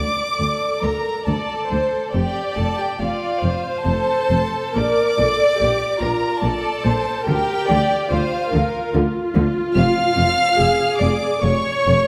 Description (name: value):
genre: classical, slow romantic movement for string orchestra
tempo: 71 BPM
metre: 3/4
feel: uneven beats, rubato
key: D minor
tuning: A4 = 440 Hz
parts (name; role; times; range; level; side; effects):
- warm chamber violin section; melody; 0.0-12.1 s; F5 to E#6; -27 LUFS; equal; none
- warm chamber violin section; second line; 0.0-12.1 s; F4 to E#5; -25 LUFS; equal; none
- clear chamber double bass section; bass; 0.0-12.0 s; F1 to D2; -27 LUFS; equal; none
- warm chamber cello section; bass; 0.0-12.0 s; D2 to D3; -26 LUFS; equal; none
- warm chamber viola section; accompaniment; 0.4-12.1 s; F4 to D5; -25 LUFS; equal; none
room: wet concert hall reverb, RT60 1.8 s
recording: none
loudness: -19 LUFS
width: mono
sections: 0.0-12.1 A section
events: none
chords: 0.0 D5; 2.1 Dm/F; 4.8 Bbmaj7; 7.3 Dmadd11; 9.8 C#/E#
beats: 0.40 1.27 | 2.14 3.00 3.85 | 4.76 5.61 6.44 | 7.28 8.12 8.94 | 9.76 10.59 11.44